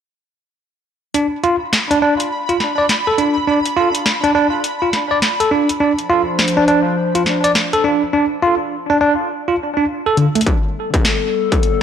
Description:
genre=IDM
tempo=103 BPM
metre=4/4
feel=swing 62% on 16ths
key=D dorian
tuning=A4 = 438 Hz
part: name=bell-like tine electric piano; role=arpeggios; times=1.1-10.4 s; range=D3 to D5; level=-15 LUFS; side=right 1 dB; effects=medium stereo tremolo, low-pass filter, analog delay
part: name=booming analog drum machine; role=drums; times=1.1-11.8 s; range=hi-hat, snare drum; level=-19 LUFS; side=left 1 dB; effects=tape echo
part: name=pulsing gated texture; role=texture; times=1.1-8.1 s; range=B5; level=-25 LUFS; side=right 2 dB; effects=chorus, built-in reverb
part: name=warbly tape-like pad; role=sustained chords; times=6.2-11.8 s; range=F3 to C5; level=-21 LUFS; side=left 3 dB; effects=chorus, built-in reverb
part: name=electronic kick drum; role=drums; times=10.5-11.6 s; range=none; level=-16 LUFS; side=left 1 dB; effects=distortion, overdrive
room=moderate lush hall reverb, RT60 1.8 s, digital ambience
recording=dry, gritty hardware recording, transformer saturation, cassette tape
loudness=-14 LUFS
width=side -8 dB against mid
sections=1.1-10.5 A section; 10.5-11.8 B section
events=drum fill 10.2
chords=1.1 D5; 5.8 Dm7/F; 10.5 Gadd9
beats=| 1.15 1.73 2.31 2.89 | 3.48 4.06 4.64 5.22 | 5.80 6.39 6.97 7.55 | 8.13 8.72 9.30 9.88 | 10.46 11.05 11.63

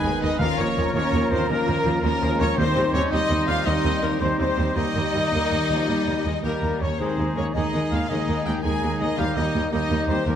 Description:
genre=cinematic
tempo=110 BPM (dotted quarters)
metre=12/8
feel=straight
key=Eb mixolydian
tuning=A4 = 440 Hz
part: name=rich symphonic violin section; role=melody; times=0.0-10.4 s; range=Bb4 to Ab5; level=-29 LUFS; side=left 5 dB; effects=none
part: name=bright clarinet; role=second line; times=0.0-10.4 s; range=Eb4 to F4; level=-34 LUFS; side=left 2 dB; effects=none
part: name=clear symphonic violin section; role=second line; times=0.0-10.4 s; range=Bb3 to Ab4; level=-33 LUFS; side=left 4 dB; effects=none
part: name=hollow concert flute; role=second line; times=0.0-10.4 s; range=Ab5 to C6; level=-34 LUFS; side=left 3 dB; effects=none
part: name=warm oboe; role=second line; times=0.0-10.4 s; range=G4 to Cb5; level=-32 LUFS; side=right 1 dB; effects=none
part: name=rich symphonic viola section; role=accompaniment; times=0.0-10.3 s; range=Eb3 to C4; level=-31 LUFS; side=right 1 dB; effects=none
part: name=mellow French horn section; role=sustained chords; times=0.0-10.4 s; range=Bb3 to Eb4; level=-30 LUFS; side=left 4 dB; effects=none
part: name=mellow trombone section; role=sustained chords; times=0.0-10.4 s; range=Eb3 to Bb3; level=-31 LUFS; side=right 4 dB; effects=none
part: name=concert harp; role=arpeggios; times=0.0-10.4 s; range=Eb3 to C6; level=-33 LUFS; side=left 8 dB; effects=none
part: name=warm trumpet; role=stabs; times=0.0-10.4 s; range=Bb4 to Ab5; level=-30 LUFS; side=right 2 dB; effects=none
part: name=clear symphonic double bass section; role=bass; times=0.0-10.3 s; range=Eb2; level=-29 LUFS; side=right 2 dB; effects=none
part: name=rich symphonic cello section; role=bass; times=0.0-10.3 s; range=Eb2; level=-29 LUFS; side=right 2 dB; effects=none
part: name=timpani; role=percussion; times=0.4-3.1 s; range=Eb3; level=-31 LUFS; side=left 1 dB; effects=none
room=moderate concert hall reverb, RT60 1.8 s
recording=none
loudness=-20 LUFS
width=side -9 dB against mid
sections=0.0-10.4 A section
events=none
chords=0.4 Bbm/Eb; 2.6 Cm/Eb; 4.8 Eb; 7.0 Abadd9/Eb; 9.2 Eb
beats=| 0.40 0.95 1.49 2.04 | 2.58 3.12 3.66 4.20 | 4.76 5.32 5.88 6.44 | 7.00 7.55 8.10 8.64 | 9.19 9.73 10.27

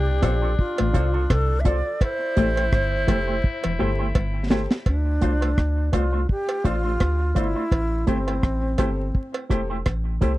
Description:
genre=roots reggae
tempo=84 BPM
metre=4/4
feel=swing 56% on 16ths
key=D minor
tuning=A4 = 445 Hz
part: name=bright wooden-headed alto flute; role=melody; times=0.0-9.5 s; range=C4 to E5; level=-27 LUFS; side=right 1 dB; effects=tape echo
part: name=raspy tenor saxophone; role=second line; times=0.0-4.5 s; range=D4 to E4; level=-33 LUFS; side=left 5 dB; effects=tape echo
part: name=mellow electric guitar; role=riff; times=0.0-4.4 s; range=E2 to C3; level=-28 LUFS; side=left 2 dB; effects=none
part: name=soft dub sub bass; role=bass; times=0.0-10.4 s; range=E1 to D2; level=-24 LUFS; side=equal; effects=none
part: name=electric guitar with an envelope filter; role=accompaniment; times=0.2-10.3 s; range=A3 to C5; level=-30 LUFS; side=right 3 dB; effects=tape echo
part: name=dark upright piano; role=stabs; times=0.2-10.4 s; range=F4 to D5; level=-30 LUFS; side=left 5 dB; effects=none
part: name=deep reggae drum kit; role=drums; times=0.2-10.4 s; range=hi-hat, kick drum, rim click, snare drum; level=-21 LUFS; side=equal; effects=none
part: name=cowbell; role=percussion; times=0.2-10.0 s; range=none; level=-31 LUFS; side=right 4 dB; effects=none
room=light reverb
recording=dry, close 1970s-style studio recording, vinyl crackle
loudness=-20 LUFS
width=side -17 dB against mid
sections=0.0-4.9 A section; 4.9-10.4 B section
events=drum fill 3.4-4.9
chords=0.0 Dm7; 2.0 Am7; 4.9 Dm7; 7.7 Am7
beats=0.58 1.30 | 2.01 2.72 3.44 4.15 | 4.86 5.58 6.29 7.00 | 7.72 8.43 9.14 9.86

